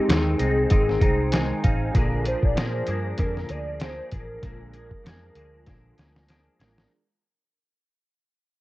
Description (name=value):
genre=indie pop, bedroom pop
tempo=97 BPM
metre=4/4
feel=swing 55% on 16ths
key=unclear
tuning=A4 = 440 Hz
part: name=warbly nostalgic lead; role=melody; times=0.0-6.6 s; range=G4 to D5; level=-28 LUFS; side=left 1 dB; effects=tremolo, ensemble chorus, tape echo
part: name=semi-hollow electric guitar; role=accompaniment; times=0.0-6.9 s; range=Ab2 to Ab4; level=-30 LUFS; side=left 2 dB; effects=ensemble chorus, warbly pitch drift
part: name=warbly lo-fi synth keys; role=accompaniment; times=0.0-6.9 s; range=Ab3 to Bb5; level=-33 LUFS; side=right 3 dB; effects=chorus, cassette tape
part: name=vintage muted fingered electric bass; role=bass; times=0.1-6.8 s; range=Ab1 to Bb2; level=-28 LUFS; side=equal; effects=none
part: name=lo-fi sampler-style drum kit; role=drums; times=0.1-6.9 s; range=hi-hat, kick drum, snare drum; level=-24 LUFS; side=equal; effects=cassette tape
room=digital ambience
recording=home recording on cassette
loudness=-21 LUFS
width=side -18 dB against mid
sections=0.0-6.9 A section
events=fade-out 0.0-6.9; synth keys fill 0.7-1.9; drum fill 5.7-6.9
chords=0.0 Ab; 1.9 Bb7